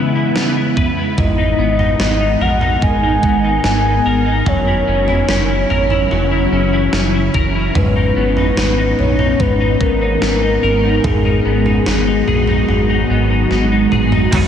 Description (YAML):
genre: dream pop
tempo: 73 BPM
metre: 4/4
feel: straight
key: G# minor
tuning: A4 = 440 Hz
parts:
  - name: soft octave-layered synth lead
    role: melody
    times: 0.0-13.9 s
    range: G#4 to G#5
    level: -20 LUFS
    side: left 2 dB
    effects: chorus, tremolo, ping-pong delay
  - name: ethereal airy pad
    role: sustained chords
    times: 0.0-14.5 s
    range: C#3 to A#4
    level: -19 LUFS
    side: equal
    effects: ensemble chorus, built-in reverb, phaser
  - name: clean electric guitar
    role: arpeggios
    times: 0.0-14.5 s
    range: G#2 to B4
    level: -19 LUFS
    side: left 2 dB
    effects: ensemble chorus, ping-pong delay
  - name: gated 80s digital drum machine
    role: drums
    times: 0.4-14.5 s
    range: crash cymbal, kick drum, snare drum, tambourine, toms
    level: -20 LUFS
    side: right 1 dB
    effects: gated reverb, gated reverb snare
  - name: round analog bass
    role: bass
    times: 1.2-14.5 s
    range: F#1 to A#1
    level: -19 LUFS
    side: equal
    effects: none
  - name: semi-hollow electric guitar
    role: accompaniment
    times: 14.3-14.5 s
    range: G#2 to D#4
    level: -18 LUFS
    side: right 5 dB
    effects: tremolo, ensemble chorus
room: wet huge ambient reverb, RT60 7.7 s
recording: dreamy mix soaked in reverb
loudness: -12 LUFS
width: side -8 dB against mid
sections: 0.0-14.3 A section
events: drum fill 13.5-14.3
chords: 0.0 C#m7; 1.2 G#madd9; 4.5 F#7; 7.8 G#madd9; 11.0 G#m7